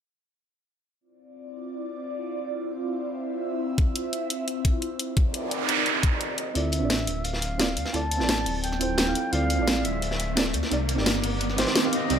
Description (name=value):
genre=liquid drum and bass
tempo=173 BPM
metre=4/4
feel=straight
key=D minor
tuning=A4 = 440 Hz
part: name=airy breathy pad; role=sustained chords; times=1.3-12.2 s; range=Eb3 to D6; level=-32 LUFS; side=left 1 dB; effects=chorus, phaser, sidechain pumping
part: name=drum and bass drum kit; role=drums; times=3.8-12.2 s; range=hi-hat, snare drum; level=-27 LUFS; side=equal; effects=studio reverb
part: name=electronic kick drum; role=drums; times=3.8-6.1 s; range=none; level=-22 LUFS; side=equal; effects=studio reverb
part: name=noise sweep and riser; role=sound effects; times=5.3-12.2 s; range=none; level=-30 LUFS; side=right 3 dB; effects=none
part: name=breathy bright concert flute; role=melody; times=6.4-12.2 s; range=Eb5 to A5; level=-32 LUFS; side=equal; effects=low-pass filter, digital delay
part: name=deep mellow chord stab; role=accompaniment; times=6.5-12.2 s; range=C4 to F5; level=-29 LUFS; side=right 3 dB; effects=chorus, dub echo
part: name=dark detuned saw bass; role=bass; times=6.6-12.2 s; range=D1 to D2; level=-29 LUFS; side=left 1 dB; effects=tube saturation
part: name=crunchy breakbeat drum kit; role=drums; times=6.6-12.2 s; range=hi-hat, snare drum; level=-31 LUFS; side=left 1 dB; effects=high-pass filter on hats, studio reverb, high-pass filter on snare, high-pass filter on room
room=light reverb, small room ambience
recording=none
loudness=-23 LUFS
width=side -8 dB against mid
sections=1.0-6.6 A section; 6.6-12.2 B section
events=filter sweep on analog synth pad 1.0-6.6, 6.6-12.2; noise sweep 5.3-6.6; build-up 6.6-12.2; riser 6.6-12.2; filter sweep on flute 6.6-12.2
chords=1.0 Dm9; 5.2 Cm9; 6.6 Dm9; 10.7 Cm9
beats=| 1.01 1.35 1.70 2.05 | 2.39 2.74 3.09 3.43 | 3.78 4.13 4.47 4.82 | 5.17 5.51 5.86 6.21 | 6.55 6.90 7.25 7.60 | 7.94 8.29 8.64 8.98 | 9.33 9.68 10.02 10.37 | 10.72 11.06 11.41 11.76 | 12.10